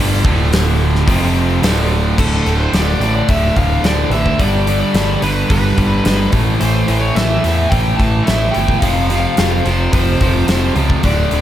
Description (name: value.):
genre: classic rock.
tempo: 108 BPM.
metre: 4/4.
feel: straight.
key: D dorian.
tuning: A4 = 441 Hz.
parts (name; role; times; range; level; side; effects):
tonewheel organ; sustained chords; 0.0-2.2 s; C4 to C5; -29 LUFS; equal; none.
cranked stack guitar; riff; 0.0-11.4 s; D2 to A3; -19 LUFS; right 7 dB; overdrive.
distorted electric guitar; riff; 0.0-11.4 s; D2 to A3; -20 LUFS; left 5 dB; distortion.
growling picked electric bass; bass; 0.0-11.4 s; D1 to E2; -17 LUFS; equal; overdrive.
gated 80s drum kit; drums; 0.2-11.4 s; crash cymbal, hi-hat, kick drum, snare drum; -18 LUFS; equal; none.
smooth overdriven lead guitar; melody; 2.2-11.4 s; A4 to A5; -21 LUFS; left 1 dB; none.
room: light reverb.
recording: none.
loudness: -12 LUFS.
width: side -11 dB against mid.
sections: 0.0-2.2 A section; 2.2-11.4 B section.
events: none.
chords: 0.0 Dm; 1.1 F5; 1.6 Dm; 2.2 D5; 4.4 G; 6.3 A5; 8.8 F5.